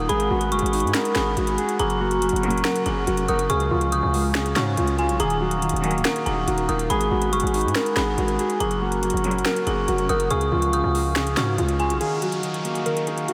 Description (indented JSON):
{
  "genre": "hip hop, trap",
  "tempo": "141 BPM",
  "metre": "4/4",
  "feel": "half-time",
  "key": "Eb minor",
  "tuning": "A4 = 439 Hz",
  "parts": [
    { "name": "muted felt-like synth keys", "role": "melody", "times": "0.0-13.3 s", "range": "F4 to Bb4", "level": "-28 LUFS", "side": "equal", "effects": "chorus, tremolo, low-pass filter, tape echo" },
    { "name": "dark detuned synth bell", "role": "second line", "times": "0.0-12.0 s", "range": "Gb5 to Eb6", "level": "-31 LUFS", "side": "equal", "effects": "chorus, tape echo" },
    { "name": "mellow electric guitar", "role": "accompaniment", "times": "0.0-13.3 s", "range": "Db3 to Gb5", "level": "-31 LUFS", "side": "equal", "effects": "lush chorus, low-pass filter" },
    { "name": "mellow accordion", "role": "sustained chords", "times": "0.0-13.3 s", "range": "Eb4 to Eb6", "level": "-31 LUFS", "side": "equal", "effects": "none" },
    { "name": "distorted 808-style bass", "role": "bass", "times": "0.0-12.0 s", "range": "Db1 to Ab2", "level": "-29 LUFS", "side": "equal", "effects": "distortion" },
    { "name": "trap drum kit", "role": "drums", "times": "0.1-13.3 s", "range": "finger snaps, hi-hat, snare drum", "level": "-32 LUFS", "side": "equal", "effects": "none" },
    { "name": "warm studio string section", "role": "stabs", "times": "2.4-2.7, 5.8-6.1, 9.2-9.5 s", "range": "Bb2 to Gb3", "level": "-37 LUFS", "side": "equal", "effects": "none" },
    { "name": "downlifter", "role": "sound effects", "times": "12.0-13.3 s", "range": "none", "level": "-42 LUFS", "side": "equal", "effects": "none" }
  ],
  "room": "wet huge ambient reverb, RT60 7.4 s",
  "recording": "dreamy mix soaked in reverb",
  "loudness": "-22 LUFS",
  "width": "mono",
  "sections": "0.0-12.0 A section; 12.0-13.3 B section",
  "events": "none",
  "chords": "0.1 Abm7; 1.8 Gb; 3.5 Db; 5.2 Ebmadd9; 6.9 Abm7; 8.6 Gb; 10.3 Db; 12.0 Ebmadd9"
}